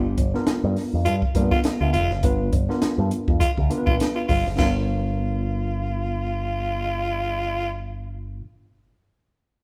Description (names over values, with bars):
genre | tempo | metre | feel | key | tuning
funk | 102 BPM | 4/4 | swing 56% on 16ths | G mixolydian | A4 = 436 Hz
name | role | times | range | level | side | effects
tine electric piano | stabs | 0.0-8.4 s | A#3 to B4 | -31 LUFS | equal | overdrive
picked electric bass with an envelope filter | bass | 0.0-8.4 s | F1 to G2 | -28 LUFS | equal | none
compact cocktail drum kit | drums | 0.2-4.7 s | hi-hat, kick drum, snare drum, splash cymbal | -26 LUFS | equal | none
growling tenor saxophone | second line | 1.1-7.7 s | F4 | -29 LUFS | equal | none
room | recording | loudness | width
moderate large studio reverb, RT60 1.5 s | band playing live in one room | -23 LUFS | mono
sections
0.0-4.6 A section; 4.6-6.9 B section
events
none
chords
0.0 G7#9